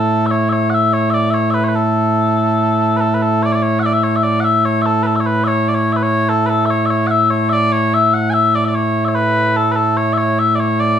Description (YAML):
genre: scottish traditional, Scottish pipe music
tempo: 73 BPM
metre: 2/4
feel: straight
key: A major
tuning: A4 = 439 Hz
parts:
  - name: mellow small bagpipes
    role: solo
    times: 0.0-11.0 s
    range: A2 to G#5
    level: -13 LUFS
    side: equal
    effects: none
room: wet studio reverb, RT60 0.5 s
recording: band playing live in one room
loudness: -13 LUFS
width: side -9 dB against mid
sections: 0.0-3.4 A section; 3.4-11.0 A section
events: none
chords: none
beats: | 0.12 0.94 | 1.76 2.58 | 3.40 4.22 | 5.05 5.87 | 6.69 7.51 | 8.33 9.16 | 9.98 10.80